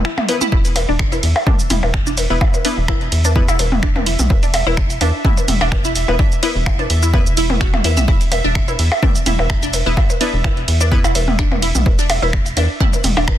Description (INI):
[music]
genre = minimal techno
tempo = 127 BPM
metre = 4/4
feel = swing 54% on 16ths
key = unclear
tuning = A4 = 440 Hz
[part]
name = rubbery square bass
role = bass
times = 0.0-13.4 s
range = E1 to E2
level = -18 LUFS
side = equal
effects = sidechain pumping
[part]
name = punchy analog drum machine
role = drums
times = 0.0-13.4 s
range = finger snaps, hi-hat, ride cymbal, shaker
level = -23 LUFS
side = right 2 dB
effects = soft clipping on snare
[part]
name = resonant blip pluck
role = riff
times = 0.1-13.2 s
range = D4 to E5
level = -23 LUFS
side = equal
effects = phaser, analog chorus, sidechain pumping, ping-pong delay
[part]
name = electronic toms and percussion blips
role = percussion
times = 0.2-13.4 s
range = none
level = -22 LUFS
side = left 1 dB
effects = ping-pong delay
[part]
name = wavetable chord stab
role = stabs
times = 0.3-11.0 s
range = B3 to B4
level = -25 LUFS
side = left 2 dB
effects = ping-pong delay
[part]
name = electronic kick drum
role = drums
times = 0.5-13.4 s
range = none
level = -17 LUFS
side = equal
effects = none
[part]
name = pulsing gated texture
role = texture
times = 0.9-13.4 s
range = E5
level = -28 LUFS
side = right 3 dB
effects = chorus, built-in reverb, sidechain pumping
[sound]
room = digital ambience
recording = dense, heavily limited modern master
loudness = -13 LUFS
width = side -12 dB against mid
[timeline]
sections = 0.0-13.4 A section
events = break 0.0-0.5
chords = 0.0 E5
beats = 0.05 | 0.52 0.99 1.47 1.94 | 2.41 2.88 3.36 3.83 | 4.30 4.77 5.25 5.72 | 6.19 6.66 7.14 7.61 | 8.08 8.55 9.03 9.50 | 9.97 10.44 10.91 11.39 | 11.86 12.33 12.80 13.28